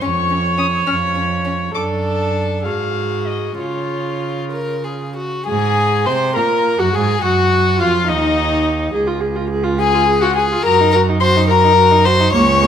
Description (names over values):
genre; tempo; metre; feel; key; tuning
quick classical-period movement for string quartet; 63-71 BPM (dotted quarters); 6/8; rubato; Db major; A4 = 439 Hz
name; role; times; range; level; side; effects
dark violin; melody; 0.0-12.7 s; Db5 to F6; -19 LUFS; left 8 dB; none
warm violin; second line; 0.0-12.7 s; Db4 to C#5; -19 LUFS; left 1 dB; none
warm viola; accompaniment; 0.0-12.7 s; A#3 to Db5; -20 LUFS; right 2 dB; none
rich cello; bass; 0.0-12.7 s; Db2 to Db3; -20 LUFS; right 4 dB; none
room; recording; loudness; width
moderate recital hall reverb, RT60 1.4 s; none; -14 LUFS; side -8 dB against mid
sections
0.0-5.5 A section; 5.5-12.7 A section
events
none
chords
0.0 Db/F; 1.8 D/F#; 2.7 Ebmadd11/Ab; 3.6 Db; 5.5 Ab9; 7.2 Ebmadd9; 8.9 Db; 10.6 Ebm/Gb